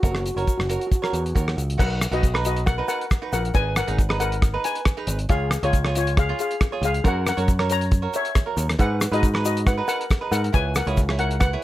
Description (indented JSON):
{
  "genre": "calypso",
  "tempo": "137 BPM",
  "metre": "4/4",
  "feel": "swing 53% on 16ths",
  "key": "B major",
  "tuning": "A4 = 440 Hz",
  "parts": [
    { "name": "steel pan", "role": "melody", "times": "0.0-11.6 s", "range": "E#4 to A#5", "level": "-26 LUFS", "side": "left 3 dB", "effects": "slapback echo" },
    { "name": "cavaquinho", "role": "accompaniment", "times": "0.0-11.6 s", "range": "D#4 to C#5", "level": "-29 LUFS", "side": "right 5 dB", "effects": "none" },
    { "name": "picked electric bass", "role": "bass", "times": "0.0-11.6 s", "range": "F#1 to G#2", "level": "-24 LUFS", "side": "equal", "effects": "none" },
    { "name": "cloth-damped thuddy drum kit", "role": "drums", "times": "0.0-11.5 s", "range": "crash cymbal, hi-hat, kick drum, rim click", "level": "-22 LUFS", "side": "equal", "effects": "none" },
    { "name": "egg shaker", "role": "percussion", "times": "0.0-11.5 s", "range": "none", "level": "-38 LUFS", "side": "left 8 dB", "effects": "none" }
  ],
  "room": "light reverb",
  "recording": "none",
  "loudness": "-20 LUFS",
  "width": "side -15 dB against mid",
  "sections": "0.0-1.8 A section; 1.8-11.6 B section",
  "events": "none",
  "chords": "0.0 F#; 1.8 Bmaj7; 3.5 G#m7; 5.3 C#; 7.0 F#7; 8.8 G#m7; 10.5 C#m7"
}